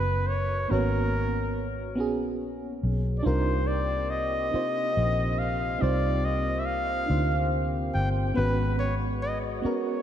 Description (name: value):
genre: R&B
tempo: 47 BPM (dotted quarters)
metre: 6/8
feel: straight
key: C minor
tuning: A4 = 440 Hz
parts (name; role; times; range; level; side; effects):
- warm flugelhorn; melody; 0.0-10.0 s; Bb4 to G5; -30 LUFS; left 1 dB; ping-pong delay
- mellow FM electric piano; accompaniment; 0.0-10.0 s; Bb3 to Db5; -31 LUFS; right 2 dB; chorus, tremolo
- vintage muted fingered electric bass; bass; 0.0-9.7 s; Gb1 to D2; -28 LUFS; equal; none
- mellow tonewheel organ; sustained chords; 3.3-10.0 s; C3 to G4; -35 LUFS; equal; overdrive, chorus vibrato, slow rotary speaker
room: moderate lush hall reverb, RT60 2.8 s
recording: dreamy mix soaked in reverb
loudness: -24 LUFS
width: side -10 dB against mid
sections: 0.0-10.0 A section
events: none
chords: 0.0 Abm11; 3.2 Cm11; 8.4 Abm11